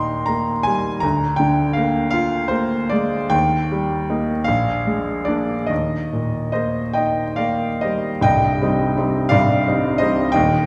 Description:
classical, romantic nocturne for solo piano; 44-59 BPM (dotted quarters); 12/8; rubato; Eb major; A4 = 439 Hz
bright baby grand piano; solo; 0.0-10.7 s; C1 to C6; -20 LUFS; equal
wet recital hall reverb, RT60 1.6 s; heard from further back in the room; -20 LUFS; mono
0.0-8.3 A section; 8.3-10.7 B section
0.0 Eb; 1.0 Bb7/D; 3.3 Eb; 4.5 Bb7; 5.7 Eb; 8.3 Cm
1.03 2.12 | 3.33 4.47 5.70 6.97 | 8.25 9.32 10.35

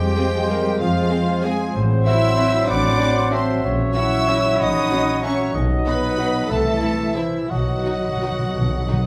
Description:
classical; 161-205 BPM; 3/4; rubato; A4 = 441 Hz
rich studio violin section; melody; 0.0-9.0 s; E5 to E6; -31 LUFS; equal
dark clarinet; second line; 0.0-8.9 s; Ab4 to F#5; -32 LUFS; equal
mellow hollow concert flute; second line; 0.0-8.8 s; C5 to C#6; -32 LUFS; equal
warm oboe; second line; 0.0-9.1 s; C5 to E5; -34 LUFS; equal
dark studio viola section; accompaniment; 0.0-9.1 s; E4 to E5; -32 LUFS; equal
warm bassoon; accompaniment; 0.0-9.1 s; E3 to Ab3; -31 LUFS; equal
dark French horn section; sustained chords; 0.0-8.9 s; D#3 to F#4; -30 LUFS; equal
concert harp; arpeggios; 0.0-9.1 s; A2 to E6; -29 LUFS; equal
clear trumpet section; stabs; 0.0-9.1 s; E4 to E5; -30 LUFS; equal
rich studio double bass section; bass; 0.0-8.8 s; A1 to F2; -27 LUFS; equal
warm studio cello section; bass; 0.0-9.1 s; E3 to E4; -29 LUFS; equal
warm studio violin section; second line; 0.2-9.0 s; C4 to Ab4; -34 LUFS; equal
timpani; percussion; 5.6-9.1 s; B2; -28 LUFS; equal
moderate recital hall reverb, RT60 1.4 s; close, detailed microphones; -20 LUFS; mono
0.0-9.1 A section
timpani fill 7.5-9.1
0.0 Fm; 1.7 F#m7b5/A; 3.6 F#7/A#; 5.6 B; 6.5 Am/C; 7.5 B
0.17 0.50 | 0.80 1.11 1.44 | 1.75 2.06 2.39 | 2.69 3.01 3.33 | 3.64 3.96 4.29 | 4.61 4.92 5.25 | 5.55 5.87 6.20 | 6.51 6.83 7.17 | 7.50 7.86 8.22 | 8.55 8.89

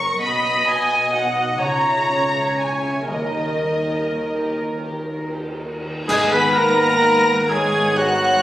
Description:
classical, slow romantic movement for symphony orchestra; 39-45 BPM (dotted quarters); 6/8; rubato; G# minor; A4 = 440 Hz
rich studio violin section; melody; 0.0-8.4 s; G4 to B6; -28 LUFS; equal
dark studio violin section; second line; 0.0-8.4 s; D#5 to C#6; -23 LUFS; left 1 dB
warm studio viola section; accompaniment; 0.0-8.4 s; A#4 to D#5; -23 LUFS; right 1 dB
concert harp; arpeggios; 0.0-8.4 s; F#2 to D#5; -33 LUFS; left 2 dB
dark studio cello section; bass; 0.0-8.4 s; F#2 to D#3; -32 LUFS; right 1 dB
rich studio double bass section; bass; 0.0-8.4 s; F#1 to D#2; -32 LUFS; right 1 dB
cymbal swell, clash cymbals and concert bass drum; percussion; 3.1-7.9 s; -29 LUFS; equal
timpani; percussion; 3.1-4.6 s; D#3; -32 LUFS; equal
flute section; second line; 6.1-8.4 s; F#5 to B5; -23 LUFS; left 1 dB
mellow oboe; second line; 6.1-8.4 s; F#4 to B4; -25 LUFS; equal
bright trombone section; sustained chords; 6.1-8.4 s; D#3 to B3; -28 LUFS; right 1 dB
mellow French horn section; sustained chords; 6.1-8.4 s; F#3 to B3; -25 LUFS; left 1 dB
mellow trumpet; stabs; 6.1-8.4 s; F#4 to B4; -18 LUFS; equal
wet recital hall reverb, RT60 1.4 s; recorded on a phone in the room, studio reverb, compression; -17 LUFS; side -13 dB against mid
0.0-6.1 A section; 6.1-8.4 B section
band accent 6.1-7.0
0.2 B; 1.6 C#m; 3.1 D#; 6.1 G#m
| 0.21 1.61 | 3.09 4.61 | 6.10 7.51

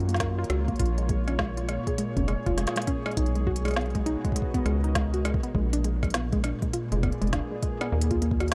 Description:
IDM; 101 BPM; 4/4; swing 62% on 16ths; Bb phrygian; A4 = 443 Hz
warbly tape-like pad; sustained chords; 0.0-8.5 s; Bb2 to F5; -37 LUFS; equal; chorus, built-in reverb
warbly dusty pluck; arpeggios; 0.0-8.5 s; Ab3 to Bb4; -34 LUFS; equal; chorus, tape echo
deep acid bass; bass; 0.0-8.5 s; F1 to Gb2; -29 LUFS; equal; tube saturation
organic electronic drum kit; drums; 0.0-8.5 s; hi-hat, rim click, snare drum; -35 LUFS; equal; overdrive
electronic kick drum; drums; 0.2-8.4 s; -32 LUFS; equal; overdrive
little or no reverb; dark, warm production; -27 LUFS; mono
0.0-8.5 A section
0.0 Ebm9; 0.8 Bbm7; 3.2 Abm9/Cb; 5.5 Bb7b9; 7.9 Ebmadd9
0.20 | 0.80 1.39 1.98 2.58 | 3.17 3.77 4.36 4.95 | 5.55 6.14 6.74 7.33 | 7.92 8.52

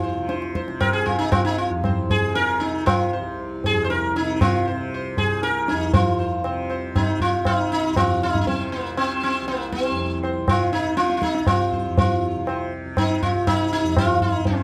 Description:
indian classical, Hindustani; 119 BPM; 3/4; straight; C raga malkauns; A4 = 440 Hz
sitar; melody; 0.0-14.6 s; Bb3 to C5; -24 LUFS; equal
tanpura; drone; 0.0-14.6 s; C2 to C3; -30 LUFS; equal
tabla; percussion; 0.3-14.6 s; -26 LUFS; equal
light reverb; close, detailed microphones; -22 LUFS; mono
0.0-5.9 A section; 5.9-14.6 A section
speeding up 0.0-14.6
0.29 0.81 | 1.33 1.84 2.36 | 2.87 3.39 3.90 | 4.41 4.92 5.43 | 5.94 6.45 6.96 | 7.46 7.97 8.47 | 8.97 9.48 9.98 | 10.48 10.98 11.48 | 11.98 12.47 12.97 | 13.47 13.96 14.46

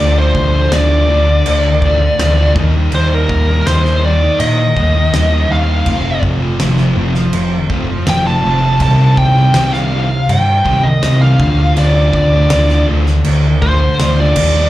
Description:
quiet-loud alternative rock; 81 BPM; 4/4; straight; A4 = 441 Hz
bluesy overdriven lead guitar; melody; 0.0-14.7 s; Bb4 to A5; -16 LUFS; equal; distortion, slapback echo
thick fuzz guitar; riff; 0.0-14.7 s; C3 to G4; -17 LUFS; equal; distortion, slapback echo
overdriven picked electric bass; bass; 0.0-14.7 s; F1 to Bb2; -13 LUFS; equal
loose indie drum kit; drums; 0.3-14.5 s; crash cymbal, kick drum, snare drum; -20 LUFS; equal
little or no reverb; live gig heard through the venue's PA, club reverb; -10 LUFS; side -15 dB against mid
0.0-14.7 A section
0.0 Dm; 2.6 Eb; 5.9 F; 8.8 Cm; 11.4 Dm
0.72 1.46 2.19 | 2.93 3.66 4.40 5.13 | 5.87 6.61 7.34 8.08 | 8.82 9.55 10.29 11.03 | 11.77 12.51 13.25 13.99

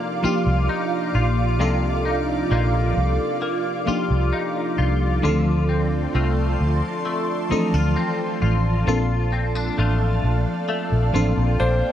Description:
contemporary R&B; 66 BPM; 4/4; straight; C dorian; A4 = 440 Hz
FM electric piano with soft pad layer; accompaniment; 0.0-11.9 s; Eb3 to F5; -24 LUFS; equal; chorus, phaser
ethereal airy pad; sustained chords; 0.0-11.9 s; F4 to D6; -27 LUFS; right 3 dB; ensemble chorus, built-in reverb
direct-recorded clean electric guitar; arpeggios; 0.0-11.9 s; C3 to F4; -28 LUFS; left 6 dB; ensemble chorus, digital delay
vintage muted fingered electric bass; bass; 0.2-11.8 s; A1 to D2; -21 LUFS; equal
warm grand piano; melody; 11.6-11.9 s; C5; -22 LUFS; equal
light reverb; -19 LUFS; side -10 dB against mid
0.0-11.9 A section
FM electric piano fill 11.1-11.9
0.0 Cm11; 5.2 Dm7; 8.9 Bbmaj7
0.69 | 1.60 2.51 3.42 4.33 | 5.24 6.14 7.05 7.96 | 8.87 9.78 10.69 11.60

